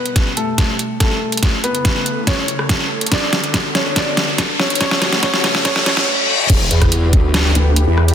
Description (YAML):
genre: heavy wobble dubstep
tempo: 142 BPM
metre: 4/4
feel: half-time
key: E dorian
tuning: A4 = 441 Hz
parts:
  - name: warm baby grand piano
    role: melody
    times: 0.0-6.1 s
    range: A3 to D5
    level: -22 LUFS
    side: left 1 dB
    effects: tape echo
  - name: lush unison pad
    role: sustained chords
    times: 0.0-8.1 s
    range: B2 to B4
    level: -26 LUFS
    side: left 1 dB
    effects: chorus, sidechain pumping
  - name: riser, reverse cymbal and impact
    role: sound effects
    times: 0.0-8.1 s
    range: none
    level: -23 LUFS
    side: left 1 dB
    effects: none
  - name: dubstep drum kit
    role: drums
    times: 0.1-8.1 s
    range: crash cymbal, hi-hat, rim click, snare drum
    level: -17 LUFS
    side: equal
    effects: none
  - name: electronic kick drum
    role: drums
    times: 0.2-7.2 s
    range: none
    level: -16 LUFS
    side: equal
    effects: none
  - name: growl bass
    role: bass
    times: 6.5-8.1 s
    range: E1 to E2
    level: -15 LUFS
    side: equal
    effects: chorus, overdrive
  - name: vowel-sweep wobble bass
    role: bass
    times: 7.6-7.9 s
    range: D2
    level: -13 LUFS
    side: equal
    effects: chorus, overdrive
room: moderate lush hall reverb, RT60 1.7 s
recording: dense, heavily limited modern master, high-pass filter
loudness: -13 LUFS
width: side -9 dB against mid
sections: 0.0-6.5 A section; 6.5-8.1 B section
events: build-up 0.0-6.5; drum fill 0.0-6.1; riser 0.0-6.1; filter sweep on analog synth pad 0.0-6.5; filter sweep 0.0-6.5; reverse cymbal 5.7-6.5; drop 6.5-8.1; impact 6.5-8.1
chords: 0.0 Em; 1.4 A; 3.1 Bm7; 4.8 F#m; 6.5 Em